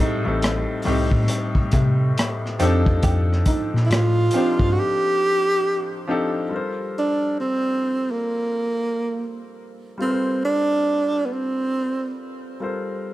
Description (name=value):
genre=R&B, neo-soul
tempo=69 BPM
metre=4/4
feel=swing 61% on 16ths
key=G minor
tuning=A4 = 440 Hz
part: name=electric guitar through a small old amp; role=second line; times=0.0-4.6 s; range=A3 to G4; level=-27 LUFS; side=right 4 dB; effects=none
part: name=clear grand piano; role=accompaniment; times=0.0-13.1 s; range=A2 to C5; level=-26 LUFS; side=left 2 dB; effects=none
part: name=mellow tine electric piano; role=bass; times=0.3-4.8 s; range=A1 to C3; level=-20 LUFS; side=equal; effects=slow stereo tremolo
part: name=crunchy breakbeat drum kit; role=drums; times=0.4-4.8 s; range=hi-hat, kick drum, rim click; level=-23 LUFS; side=equal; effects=none
part: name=breathy tenor saxophone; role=melody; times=3.9-12.2 s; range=Bb3 to G4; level=-22 LUFS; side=right 1 dB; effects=tape echo
room=light reverb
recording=dark, warm production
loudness=-19 LUFS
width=side -16 dB against mid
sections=0.0-6.5 A section; 6.5-13.1 B section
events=break 4.8-6.5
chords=0.0 Am7b5; 2.6 F13; 6.5 Gm11